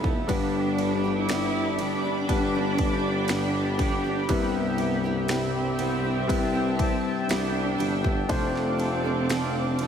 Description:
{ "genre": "pop ballad", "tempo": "60 BPM", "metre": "4/4", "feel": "straight", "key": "unclear", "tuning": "A4 = 436 Hz", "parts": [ { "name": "dark studio cello section", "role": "second line", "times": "0.0-9.9 s", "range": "B3 to E4", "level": "-30 LUFS", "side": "right 2 dB", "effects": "ping-pong delay" }, { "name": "dark baby grand piano", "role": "accompaniment", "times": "0.0-9.9 s", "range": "G2 to C5", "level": "-28 LUFS", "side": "left 3 dB", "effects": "none" }, { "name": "chorused pulse-width pad", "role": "sustained chords", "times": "0.0-9.9 s", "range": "G4 to D6", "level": "-31 LUFS", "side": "equal", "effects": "none" }, { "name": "picked steel-string acoustic guitar", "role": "arpeggios", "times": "0.0-9.9 s", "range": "G2 to A4", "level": "-34 LUFS", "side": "right 5 dB", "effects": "none" }, { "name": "breathy tuba", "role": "bass", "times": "0.0-9.9 s", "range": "F1 to C2", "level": "-32 LUFS", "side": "equal", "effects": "none" }, { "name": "house drum kit", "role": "drums", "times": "0.0-9.9 s", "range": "kick drum, ride cymbal, snare drum", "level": "-30 LUFS", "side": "equal", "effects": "none" } ], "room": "light reverb", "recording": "none", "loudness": "-23 LUFS", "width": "side -8 dB against mid", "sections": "0.0-9.9 A section", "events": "none", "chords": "0.3 G; 4.3 Cmaj7; 8.3 F6", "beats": "| 0.29 1.29 2.29 3.29 | 4.29 5.29 6.29 7.29 | 8.29 9.29" }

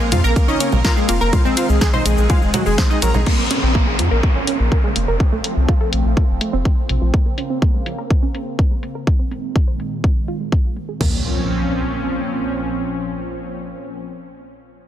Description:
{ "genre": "melodic techno", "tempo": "124 BPM", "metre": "4/4", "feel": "straight", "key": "Bb minor", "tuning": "A4 = 440 Hz", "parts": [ { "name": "expressive synth lead", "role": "melody", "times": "0.0-3.2 s", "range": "Ab3 to Bb4", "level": "-24 LUFS", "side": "equal", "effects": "chorus, vintage 12-bit sampler grit, sidechain pumping, dub echo" }, { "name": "big bright polysynth", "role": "second line", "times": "0.0-3.2 s", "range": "Ab4 to Bb5", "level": "-29 LUFS", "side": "left 2 dB", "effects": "chorus, phaser, sidechain pumping, dub echo" }, { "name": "lush unison pad", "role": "sustained chords", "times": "0.0-14.0 s", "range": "Bb2 to Db4", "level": "-25 LUFS", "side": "right 1 dB", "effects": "chorus, phaser, sidechain pumping" }, { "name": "tight sequenced synth", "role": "arpeggios", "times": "0.0-11.2 s", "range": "C3 to C6", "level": "-24 LUFS", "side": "right 1 dB", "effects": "chorus, cassette tape, sidechain pumping, dub echo" }, { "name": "round analog bass", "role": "bass", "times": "0.0-7.1 s", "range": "F1 to F2", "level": "-18 LUFS", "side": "equal", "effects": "sidechain pumping" }, { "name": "house drum kit", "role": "drums", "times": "0.0-10.9 s", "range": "congas, crash cymbal, hi-hat, ride cymbal, shaker, snare drum", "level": "-23 LUFS", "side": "right 1 dB", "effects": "low-pass filter on cymbals, low-pass filter on perc, low-pass filter on hats, low-pass filter on snare" }, { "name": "house drum kit", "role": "drums", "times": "0.4-11.1 s", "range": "crash cymbal, kick drum, toms", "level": "-17 LUFS", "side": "equal", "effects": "none" }, { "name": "downlifter and impact", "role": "sound effects", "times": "3.3-7.1, 11.0-14.1 s", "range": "none", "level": "-26 LUFS", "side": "equal", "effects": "none" } ], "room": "little or no reverb", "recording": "dense, heavily limited modern master", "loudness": "-16 LUFS", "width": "side -11 dB against mid", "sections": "0.0-3.3 A section; 3.3-11.0 B section; 11.0-14.9 C section", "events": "drop 0.0-3.3; filter sweep on drum 3.3-11.0; filter sweep on synth arpeggio sound 3.3-11.0; filter sweep on analog synth pad 3.3-11.0", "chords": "0.0 Bbmadd9; 1.3 Ab/Bb; 3.3 Bbmadd9; 5.2 F/Bb; 7.1 Bbmadd9; 9.1 Ab/Bb; 11.0 Bbmadd9", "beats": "0.36 0.85 | 1.33 1.81 2.30 2.78 | 3.27 3.75 4.23 4.72 | 5.20 5.68 6.17 6.65 | 7.14 7.62 8.10 8.59 | 9.07 9.56 10.04 10.52 | 11.01 11.49 11.97 12.46 | 12.94 13.43 13.91" }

